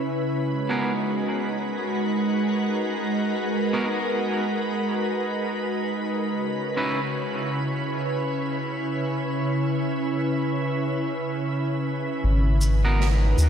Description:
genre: ambient dub.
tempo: free time.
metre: none.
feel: none.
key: G# minor.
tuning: A4 = 440 Hz.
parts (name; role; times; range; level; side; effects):
soft additive organ-like pad; sustained chords; 0.0-13.5 s; C#3 to B4; -24 LUFS; right 1 dB; ensemble chorus, built-in reverb.
electric guitar at the edge of break-up; stabs; 0.7-7.0, 12.8-13.1 s; B3 to B4; -31 LUFS; right 1 dB; dub echo.
round analog bass; bass; 12.2-13.5 s; G#1 to D#2; -19 LUFS; equal; none.
shaker and snare drum; drums; 12.6-13.5 s; none; -32 LUFS; right 2 dB; studio reverb.
room: wet lush hall reverb, RT60 2.7 s.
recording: dreamy mix soaked in reverb.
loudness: -23 LUFS.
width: side -8 dB against mid.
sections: 0.0-12.2 A section; 12.2-13.5 B section.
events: filter sweep on clean electric guitar 0.0-12.2.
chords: 0.1 G#m9; 6.2 C#m7; 12.2 G#m9.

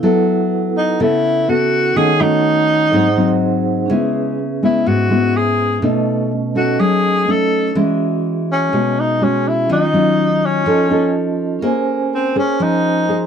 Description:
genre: bossa nova.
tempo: 124 BPM.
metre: 4/4.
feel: straight.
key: C# minor.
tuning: A4 = 440 Hz.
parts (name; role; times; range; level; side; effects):
nylon-string guitar; accompaniment; 0.0-13.3 s; G#2 to C5; -16 LUFS; left 2 dB; none.
vibraphone with medium mallets; accompaniment; 0.0-13.3 s; A3 to Ab5; -22 LUFS; right 7 dB; none.
breathy tenor saxophone; melody; 0.8-13.3 s; C4 to A4; -16 LUFS; left 1 dB; none.
room: light reverb.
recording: dry, close 1970s-style studio recording.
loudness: -14 LUFS.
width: side -7 dB against mid.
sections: 0.0-11.6 A section; 11.6-13.3 B section.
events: tenor saxophone solo 11.6-13.3.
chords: 0.0 F#m7; 2.0 D#m7b5; 2.9 G#7; 3.9 C#m7; 5.8 B9; 7.8 E69; 9.7 D#m9; 10.7 Faug7; 11.6 Bbm9.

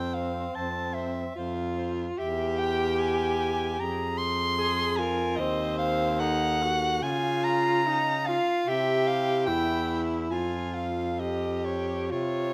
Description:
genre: classical, lyrical piece for single-reed quartet.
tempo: 63-77 BPM.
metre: 4/4.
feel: rubato.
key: F minor.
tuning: A4 = 440 Hz.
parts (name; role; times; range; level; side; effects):
clear soprano saxophone; melody; 0.0-12.5 s; Db5 to C6; -32 LUFS; equal; none.
mellow tenor saxophone; accompaniment; 0.0-12.5 s; C4 to Ab4; -32 LUFS; equal; none.
mellow baritone saxophone; bass; 0.0-12.5 s; Eb2 to Db3; -34 LUFS; equal; none.
clear alto saxophone; second line; 0.2-12.5 s; Eb4 to C5; -38 LUFS; equal; none.
room: moderate recital hall reverb, RT60 1.3 s.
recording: close, detailed microphones.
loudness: -28 LUFS.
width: mono.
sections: 0.0-12.5 A section.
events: none.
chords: 0.0 F5; 2.2 Em; 3.8 Fm; 5.4 Ebdim7; 7.0 Bbm/Db; 8.7 C; 10.3 Fm9.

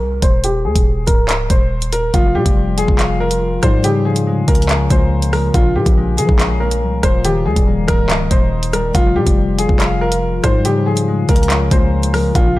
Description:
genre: hip hop, drill.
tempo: 141 BPM.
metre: 4/4.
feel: half-time.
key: unclear.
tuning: A4 = 443 Hz.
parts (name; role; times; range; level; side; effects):
dark grand piano; melody; 0.0-12.6 s; F4 to C5; -20 LUFS; equal; low-pass filter, ping-pong delay.
growling 808-style bass; bass; 0.0-12.6 s; Db1 to F3; -18 LUFS; equal; none.
drill drum kit; drums; 0.2-12.4 s; handclaps, hi-hat, kick drum, rim click; -15 LUFS; equal; none.
concert harp; accompaniment; 2.1-12.6 s; Bb2 to F5; -19 LUFS; left 4 dB; low-pass filter.
room: small room reverb.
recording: dark, warm production.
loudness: -12 LUFS.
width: side -17 dB against mid.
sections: 0.0-12.6 A section.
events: filter sweep 0.0-2.1.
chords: 0.4 Eb5; 2.1 Fsus2; 3.8 Db6; 5.5 Bbm7; 7.2 Eb; 8.9 Fsus2; 10.6 Db6.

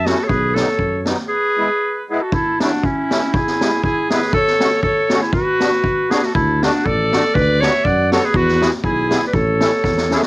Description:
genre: alpine folk, alpine dance band.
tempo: 120 BPM.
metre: 2/4.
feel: swing 54% on 8ths, rubato.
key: A major.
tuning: A4 = 440 Hz.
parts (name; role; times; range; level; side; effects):
clear clarinet; melody; 0.0-10.3 s; C#4 to D5; -17 LUFS; equal; cassette tape.
clear trumpet; second line; 0.0-10.2 s; B3 to F#5; -24 LUFS; right 2 dB; none.
mellow tuba; bass; 0.0-1.1, 6.3-10.2 s; A1 to F#2; -21 LUFS; equal; none.
musette accordion; accompaniment; 0.1-10.2 s; F#3 to A4; -22 LUFS; left 1 dB; none.
street-band drum kit; drums; 0.1-10.3 s; kick drum, snare drum; -20 LUFS; equal; cassette tape.
room: light reverb.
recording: home recording on cassette.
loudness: -14 LUFS.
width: side -22 dB against mid.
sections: 0.0-2.3 A section; 2.3-10.3 B section.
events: drum fill 9.8-10.3.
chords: 0.3 B; 1.3 E; 2.3 A; 3.3 E; 4.3 F#m; 5.3 Bm; 6.3 D; 7.4 Bm/D; 8.3 E; 9.3 A.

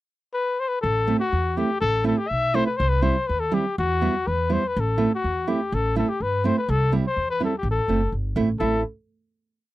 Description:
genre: klezmer.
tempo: 123 BPM.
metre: 2/4.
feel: straight.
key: unclear.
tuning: A4 = 444 Hz.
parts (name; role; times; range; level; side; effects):
mellow cornet; melody; 0.3-8.8 s; F#4 to E5; -24 LUFS; left 3 dB; none.
upright bass; bass; 0.8-8.8 s; F#1 to G2; -25 LUFS; equal; none.
nylon-string guitar; accompaniment; 1.1-8.8 s; G3 to E4; -24 LUFS; right 4 dB; none.
room: light reverb.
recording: dry, close 1970s-style studio recording.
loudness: -21 LUFS.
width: side -16 dB against mid.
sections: 0.0-0.8 pickup bar; 0.8-8.6 A section; 8.6-9.5 final chord.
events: none.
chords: 0.0 N.C.; 0.8 Am; 2.8 C; 3.8 Em; 4.7 Am; 6.7 C; 7.6 Am.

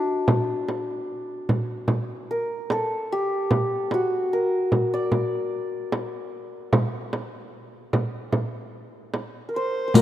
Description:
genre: Persian modal ensemble.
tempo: 74 BPM.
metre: 4/4.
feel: straight.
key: D dastgah homayun.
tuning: A4 = 440 Hz.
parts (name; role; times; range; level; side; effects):
santur; melody; 0.0-10.0 s; D4 to D5; -25 LUFS; left 1 dB; none.
frame drum; percussion; 0.3-10.0 s; none; -24 LUFS; right 1 dB; none.
rich kamancheh; second line; 9.6-10.0 s; Bb4 to C5; -28 LUFS; left 3 dB; none.
riq; percussion; 10.0 s; none; -12 LUFS; left 4 dB; none.
room: moderate plate reverb, RT60 3.3 s.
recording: rough home demo mix.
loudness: -23 LUFS.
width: side -12 dB against mid.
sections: 0.0-10.0 A section.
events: none.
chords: none.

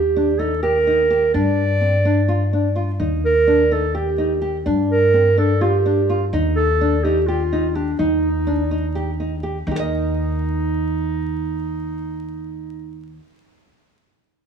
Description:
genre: contemporary instrumental, chamber music in an uneven meter.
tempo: 252 BPM (eighths).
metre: 7/8.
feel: straight.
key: Eb lydian.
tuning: A4 = 440 Hz.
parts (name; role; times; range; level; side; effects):
mellow clarinet; melody; 0.0-13.2 s; D4 to D5; -20 LUFS; right 2 dB; none.
upright bass; bass; 0.0-13.2 s; Eb2 to G2; -22 LUFS; equal; none.
nylon-string guitar; arpeggios; 0.2-13.3 s; C4 to Eb5; -23 LUFS; left 1 dB; none.
room: light reverb.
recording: vinyl crackle, small room ambience.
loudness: -17 LUFS.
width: side -7 dB against mid.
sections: 0.0-9.7 A section; 9.7-13.1 B section.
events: none.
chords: 0.0 Eb; 1.3 G5; 3.0 Eb; 4.7 Gm7; 6.3 Eb; 9.7 Eb5.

